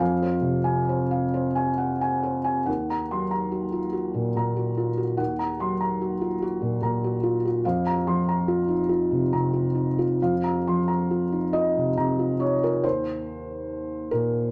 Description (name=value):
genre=neoclassical minimalist piano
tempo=44-50 BPM (dotted quarters)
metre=6/8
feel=rubato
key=unclear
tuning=A4 = 444 Hz
part: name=felt-muted upright piano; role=solo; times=0.0-14.5 s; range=Eb2 to C6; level=-25 LUFS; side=equal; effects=none
room=moderate studio reverb, RT60 0.7 s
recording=none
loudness=-25 LUFS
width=mono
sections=0.0-2.7 A section; 2.7-12.8 B section; 12.8-14.5 C section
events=none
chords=0.0 Fm; 2.7 Ebmadd9; 7.6 Fsus4; 12.8 Eb5